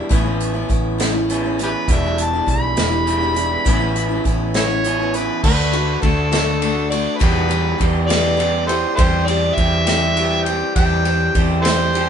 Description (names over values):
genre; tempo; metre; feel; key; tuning
folk rock and heartland rock; 68 BPM (dotted quarters); 6/8; straight; unclear; A4 = 440 Hz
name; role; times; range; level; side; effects
picked steel-string acoustic guitar; accompaniment; 0.0-12.1 s; E2 to G4; -25 LUFS; left 4 dB; none
electric guitar through a small old amp; riff; 0.0-12.1 s; E2 to G4; -23 LUFS; right 2 dB; none
hollow-body short-scale picked electric bass; bass; 0.1-12.1 s; E1 to E2; -22 LUFS; equal; none
unplugged drum kit; drums; 0.1-12.1 s; crash cymbal, hi-hat, kick drum, ride cymbal, snare drum; -20 LUFS; equal; none
overdriven harmonica; melody; 1.6-12.1 s; E4 to B5; -20 LUFS; equal; none
room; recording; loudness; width
moderate studio reverb, RT60 0.6 s; band playing live in one room, nothing above 10.8 kHz; -15 LUFS; side -8 dB against mid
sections
0.0-5.4 A section; 5.4-12.1 B section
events
harmonica solo 0.0-5.4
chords
0.1 Aadd9; 1.9 Em7; 3.7 Aadd9; 5.4 D; 7.2 Em; 9.0 C/E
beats
| 0.11 1.00 | 1.89 2.77 | 3.66 4.55 | 5.43 6.32 | 7.21 8.10 | 8.99 9.88 | 10.77 11.66